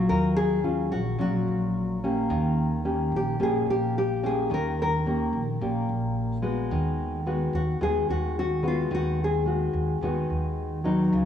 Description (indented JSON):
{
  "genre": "bossa nova",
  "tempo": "109 BPM",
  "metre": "4/4",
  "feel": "straight",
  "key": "unclear",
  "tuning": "A4 = 438 Hz",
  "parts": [
    { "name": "nylon-string guitar", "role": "melody", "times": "0.0-10.8 s", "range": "F4 to Bb4", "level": "-29 LUFS", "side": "left 2 dB", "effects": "cassette tape" },
    { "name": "nylon-string guitar", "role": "accompaniment", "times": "0.0-11.3 s", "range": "Bb2 to G4", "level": "-26 LUFS", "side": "left 1 dB", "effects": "cassette tape" },
    { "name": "upright bass", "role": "bass", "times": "0.0-11.3 s", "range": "Bb1 to Eb2", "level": "-30 LUFS", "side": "right 1 dB", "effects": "none" }
  ],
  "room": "light reverb, small room ambience",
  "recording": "home recording on cassette",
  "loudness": "-24 LUFS",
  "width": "side -9 dB against mid",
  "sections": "0.0-11.3 A section",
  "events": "none",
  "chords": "0.0 Ebm9; 2.3 Eb7; 6.7 Abm7/Eb"
}